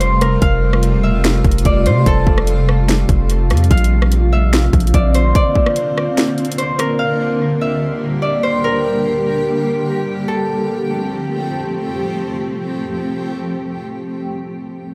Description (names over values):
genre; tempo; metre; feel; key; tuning
hip hop, atmospheric cloud-rap; 146 BPM; 4/4; half-time; F major; A4 = 440 Hz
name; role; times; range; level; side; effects
concert harp; melody; 0.0-12.5 s; A4 to F5; -22 LUFS; equal; dub echo
granular cloud pad; sustained chords; 0.0-14.3 s; C3 to G4; -22 LUFS; equal; built-in reverb, sidechain pumping
long sustained 808-style bass; bass; 0.0-5.3 s; E1 to C3; -17 LUFS; equal; none
trap drum kit; drums; 0.0-6.9 s; hi-hat, kick drum, rim click, snare drum; -19 LUFS; equal; overdrive
room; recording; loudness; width
little or no reverb; echo-heavy mix; -16 LUFS; mono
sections
0.0-10.3 A section; 10.3-13.6 B section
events
none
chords
0.0 Fadd9; 3.7 Bbadd9; 7.0 Gm; 10.3 Fadd9